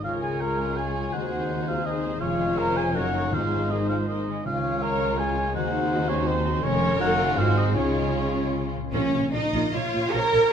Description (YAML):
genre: classical, dramatic, fast romantic movement for symphony orchestra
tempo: 149-169 BPM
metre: 3/4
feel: rubato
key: Db major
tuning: A4 = 435 Hz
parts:
  - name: warm symphonic violin section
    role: melody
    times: 0.0-10.5 s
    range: Db4 to Eb5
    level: -36 LUFS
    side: left 3 dB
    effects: none
  - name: dark clarinet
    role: second line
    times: 0.0-8.5 s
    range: C4 to Bb4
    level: -34 LUFS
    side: left 1 dB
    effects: none
  - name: dark symphonic violin section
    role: second line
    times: 0.0-10.5 s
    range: Ab3 to Bb5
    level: -35 LUFS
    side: left 3 dB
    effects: none
  - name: mellow cor anglais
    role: second line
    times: 0.0-8.5 s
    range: Bb4 to Ab5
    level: -29 LUFS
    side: right 2 dB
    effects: none
  - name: mellow hollow concert flute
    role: second line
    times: 0.0-8.5 s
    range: C5 to Bb5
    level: -35 LUFS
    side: left 3 dB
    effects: none
  - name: warm symphonic viola section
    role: accompaniment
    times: 0.0-10.4 s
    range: F3 to Db5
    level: -34 LUFS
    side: equal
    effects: none
  - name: mellow French horn section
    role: sustained chords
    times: 0.0-8.7 s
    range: Ab3 to Gb4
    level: -33 LUFS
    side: left 5 dB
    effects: none
  - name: concert harp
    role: arpeggios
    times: 0.0-10.5 s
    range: F2 to Cb5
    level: -33 LUFS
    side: left 9 dB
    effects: none
  - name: bright trumpet section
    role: stabs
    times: 0.0-8.7 s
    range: C5 to Db5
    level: -34 LUFS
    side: equal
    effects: none
  - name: dark symphonic cello section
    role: bass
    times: 0.0-10.5 s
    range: Db2 to Bb4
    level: -28 LUFS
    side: right 2 dB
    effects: none
  - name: warm symphonic double bass section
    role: bass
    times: 0.0-10.4 s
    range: F1 to Eb2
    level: -31 LUFS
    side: right 3 dB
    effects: none
  - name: timpani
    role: percussion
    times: 3.3-5.0, 8.9-9.5 s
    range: Ab2 to Db3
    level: -35 LUFS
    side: equal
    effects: none
room: wet recital hall reverb, RT60 1.6 s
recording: none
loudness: -22 LUFS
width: side -8 dB against mid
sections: 0.0-8.9 A section; 8.9-10.5 B section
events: none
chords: 0.0 Db; 1.1 Ab7/Eb; 2.2 Db/F; 2.9 Ebm7/Gb; 3.3 Ab; 4.5 Db; 5.6 Ab7/Eb; 6.6 Db/F; 7.0 Ebm7/Gb; 7.4 Ab7; 7.8 Db; 8.9 Bbm